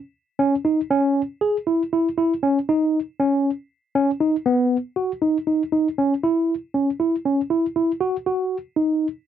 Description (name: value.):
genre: progressive instrumental, progressive.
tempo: 237 BPM (eighths).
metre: 7/8.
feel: straight.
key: C# minor.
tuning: A4 = 441 Hz.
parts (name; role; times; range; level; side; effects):
tine electric piano; solo; 0.4-9.1 s; B3 to G#4; -19 LUFS; equal; medium stereo tremolo.
room: light reverb.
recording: dry, close 1970s-style studio recording.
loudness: -19 LUFS.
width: side -9 dB against mid.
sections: 0.0-6.2 A section; 6.2-9.3 B section.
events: none.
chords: none.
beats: 0.14 0.39 0.64 | 0.90 1.15 1.41 1.66 1.91 2.17 2.42 | 2.67 2.92 3.18 3.43 3.69 3.94 4.19 | 4.45 4.70 4.95 5.21 5.46 5.71 5.97 | 6.22 6.47 6.73 6.98 7.24 7.49 7.75 | 8.00 8.25 8.51 8.76 9.02.